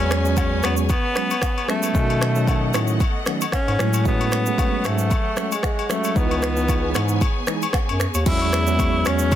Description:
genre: afrobeats.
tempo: 114 BPM.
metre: 4/4.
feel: swing 55% on 16ths.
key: E major.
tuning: A4 = 441 Hz.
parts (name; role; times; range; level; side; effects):
breathy tenor saxophone; melody; 0.0-9.4 s; G#3 to E4; -25 LUFS; equal; digital delay.
bell-like tine electric piano; accompaniment; 0.0-9.3 s; D#3 to D#4; -26 LUFS; right 1 dB; medium stereo tremolo.
clear studio string section; sustained chords; 0.0-9.4 s; E3 to G#5; -32 LUFS; left 2 dB; none.
mellow bass clarinet; bass; 0.0-9.3 s; C#2 to B2; -22 LUFS; equal; none.
agogo bells and woodblock; percussion; 0.0-9.4 s; none; -30 LUFS; left 7 dB; none.
afro-pop drum kit; drums; 0.1-9.4 s; crash cymbal, finger snaps, kick drum, rim click, shaker; -23 LUFS; equal; soft clipping on snare.
room: small room ambience.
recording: dense, heavily limited modern master.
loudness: -18 LUFS.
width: side -11 dB against mid.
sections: 0.0-8.3 A section; 8.3-9.4 B section.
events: none.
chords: 0.0 E6; 1.9 B7; 3.8 F#madd9; 6.2 C#m7; 8.3 E6.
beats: 0.37 0.90 1.42 | 1.95 2.48 3.00 3.53 | 4.05 4.58 5.11 5.63 | 6.16 6.68 7.21 7.74 | 8.26 8.79 9.32.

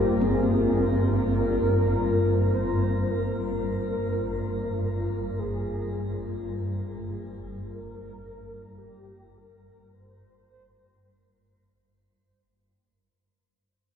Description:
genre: dark ambient drone.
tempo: free time.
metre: none.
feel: none.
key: unclear.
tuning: A4 = 435 Hz.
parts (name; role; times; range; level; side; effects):
mellow horn-like synth lead; melody; 0.0-11.7 s; G4 to C5; -32 LUFS; right 1 dB; ensemble chorus, shimmer reverb, diffuse ambient delay.
dark analog pad; sustained chords; 0.0-12.3 s; Bb3 to C5; -30 LUFS; left 2 dB; chorus, phaser, shimmer reverb.
swarming drone; drone; 0.0-12.4 s; G1 to G2; -28 LUFS; equal; built-in reverb.
gamelan-type bronze metallophone; arpeggios; 0.2-7.0 s; C4; -32 LUFS; right 2 dB; diffuse ambient delay.
room: wet huge ambient reverb, RT60 7.3 s.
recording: in a vast, echoing space.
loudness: -24 LUFS.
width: side -8 dB against mid.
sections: 0.0-12.3 A section.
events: fade-out 0.0-12.3.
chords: 0.0 Abadd9/G (rootless).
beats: free time.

